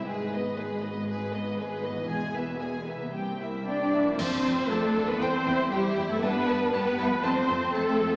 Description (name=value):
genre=cinematic, heroic adventure film score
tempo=118 BPM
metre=4/4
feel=straight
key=F lydian from 4.2 s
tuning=A4 = 440 Hz
part: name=rich symphonic violin section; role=melody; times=0.0-8.1 s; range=B4 to A5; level=-37 LUFS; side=equal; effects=none
part: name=rich studio violin section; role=second line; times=0.0-8.2 s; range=C4 to B4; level=-34 LUFS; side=equal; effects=none
part: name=rich studio viola section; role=accompaniment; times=0.0-8.2 s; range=G#3 to D5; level=-30 LUFS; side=equal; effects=none
part: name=concert harp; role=arpeggios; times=0.0-8.2 s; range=E2 to E5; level=-40 LUFS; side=equal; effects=none
part: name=clear symphonic double bass section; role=bass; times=0.0-8.1 s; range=E1 to G2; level=-36 LUFS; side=equal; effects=none
part: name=warm symphonic cello section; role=bass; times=0.0-8.2 s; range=C2 to D4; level=-31 LUFS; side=equal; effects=none
part: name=dark French horn section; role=sustained chords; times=3.7-8.2 s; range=G3 to D4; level=-33 LUFS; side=equal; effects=none
part: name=clash cymbals and concert bass drum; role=percussion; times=4.2-5.2 s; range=none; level=-37 LUFS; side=equal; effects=none
room=wet scoring stage reverb, RT60 1.9 s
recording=heard from further back in the room, small speaker sound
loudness=-25 LUFS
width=side -26 dB against mid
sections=0.0-4.2 A section; 4.2-8.2 B section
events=band accent 4.2-4.7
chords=0.1 G#m; 2.1 E; 3.1 C7; 4.2 F; 5.2 C/E; 6.2 Gadd9; 7.2 F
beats=| 0.07 0.58 1.08 1.58 | 2.09 2.60 3.13 3.67 | 4.19 4.70 5.21 5.72 | 6.23 6.74 7.25 7.75